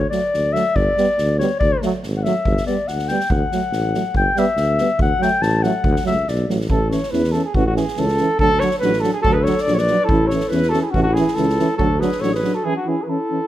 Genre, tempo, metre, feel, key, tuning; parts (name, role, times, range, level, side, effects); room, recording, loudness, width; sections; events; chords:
balkan folk, Balkan brass band; 141 BPM; 2/4; swing 53% on 16ths; D major, A major from 6.7 s; A4 = 439 Hz
dark clarinet; second line; 0.0-6.5, 9.2-13.5 s; C#4 to A5; -21 LUFS; left 3 dB
mellow tuba; bass; 0.0-12.4 s; G1 to E2; -22 LUFS; equal
mellow euphonium; accompaniment; 0.1-13.4 s; A3 to D4; -26 LUFS; left 4 dB
mellow trombone; accompaniment; 0.1-13.4 s; E3 to G3; -25 LUFS; right 5 dB
street-band drum kit; percussion; 0.1-12.5 s; kick drum, snare drum; -25 LUFS; equal
dark cornet; melody; 6.7-13.5 s; F#4 to D5; -20 LUFS; right 1 dB
light reverb; close, detailed microphones; -16 LUFS; side -13 dB against mid
0.0-6.7 A section; 6.7-13.5 B section
clarinet solo 0.0-6.7; break 12.6-13.5
0.0 D; 0.8 G; 1.6 D; 2.5 G; 3.3 D; 4.2 G; 5.0 D; 6.7 A; 8.4 D; 10.1 A; 11.8 D; 12.6 A